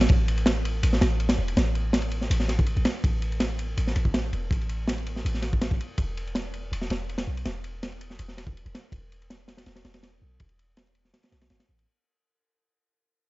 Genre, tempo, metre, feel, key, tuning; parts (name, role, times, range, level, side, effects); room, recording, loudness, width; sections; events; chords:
drum and bass, jungle; 163 BPM; 4/4; straight; A4 = 440 Hz
warm 808-style bass; bass; 0.0-11.9 s; E1 to B1; -27 LUFS; equal
crunchy breakbeat drum kit; drums; 0.0-11.9 s; kick drum, ride cymbal, snare drum; -26 LUFS; equal
little or no reverb; dark, warm production, nothing above 7.6 kHz; -24 LUFS; side -20 dB against mid
0.0-11.9 A section
fade-out 0.1-11.9